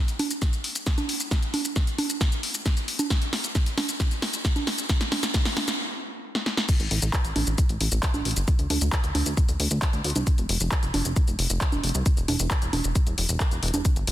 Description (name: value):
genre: uplifting trance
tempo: 134 BPM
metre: 4/4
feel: straight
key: unclear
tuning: A4 = 440 Hz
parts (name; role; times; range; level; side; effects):
- punchy analog drum machine; drums; 0.1-14.1 s; congas, crash cymbal, handclaps, hi-hat, shaker, snare drum; -26 LUFS; right 1 dB; sidechain pumping on hats, sidechain pumping on perc, sidechain pumping on cymbals
- electronic kick drum; drums; 0.4-13.9 s; none; -23 LUFS; equal; none
- plucky analog bass; bass; 6.8-14.1 s; E1 to D2; -26 LUFS; equal; sidechain pumping
room: light reverb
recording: dense, heavily limited modern master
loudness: -22 LUFS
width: side -14 dB against mid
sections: 0.0-6.7 A section; 6.7-14.1 B section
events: build-up 0.0-6.7; drum fill 0.0-5.8, 6.3-6.7; stop 5.8-6.7; drop 6.7-14.1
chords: none